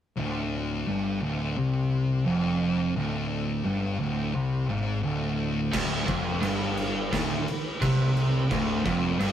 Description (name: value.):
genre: stoner and doom metal.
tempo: 86 BPM.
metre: 4/4.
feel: straight.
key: D minor.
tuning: A4 = 440 Hz.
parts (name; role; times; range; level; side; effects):
thick fuzz guitar; riff; 0.2-9.3 s; D2 to C3; -28 LUFS; left 3 dB; distortion.
thick fuzz guitar; riff; 0.2-9.3 s; D2 to C3; -32 LUFS; right 5 dB; distortion.
growling picked electric bass; bass; 0.2-9.3 s; D1 to C2; -33 LUFS; right 1 dB; overdrive.
overdriven electric guitar; riff; 5.7-9.3 s; D2 to C3; -30 LUFS; right 3 dB; none.
oversized low-tuned drum kit; drums; 5.7-9.3 s; crash cymbal, kick drum, snare drum; -30 LUFS; equal; none.
room: moderate studio ambience, RT60 0.5 s.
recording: rough rehearsal-room recording.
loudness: -24 LUFS.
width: side -10 dB against mid.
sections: 0.2-5.7 A section; 5.7-9.3 B section.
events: none.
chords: 0.2 Dm.